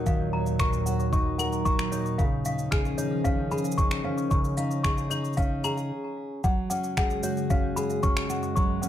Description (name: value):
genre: folktronica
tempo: 113 BPM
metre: 4/4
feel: straight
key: F# major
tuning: A4 = 441 Hz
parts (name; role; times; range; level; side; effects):
- toy piano; second line; 0.0-8.9 s; C#5 to E#6; -32 LUFS; left 3 dB; digital delay
- warbly tape-like pad; sustained chords; 0.0-8.9 s; D#2 to C#4; -31 LUFS; right 1 dB; chorus, built-in reverb, phaser
- fingerpicked steel-string acoustic guitar; arpeggios; 0.0-8.9 s; C#3 to A#4; -29 LUFS; equal; vintage 12-bit sampler grit, digital delay
- electronic kick drum; drums; 0.1-8.7 s; none; -26 LUFS; equal; none
- electronic shaker, finger snaps and claves; drums; 0.1-8.9 s; none; -35 LUFS; left 1 dB; none
room: light reverb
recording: none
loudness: -24 LUFS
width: side -11 dB against mid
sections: 0.0-6.4 A section; 6.4-8.9 B section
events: stop 5.9-6.4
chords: 0.0 D#m; 2.2 C#add9; 6.4 F#sus2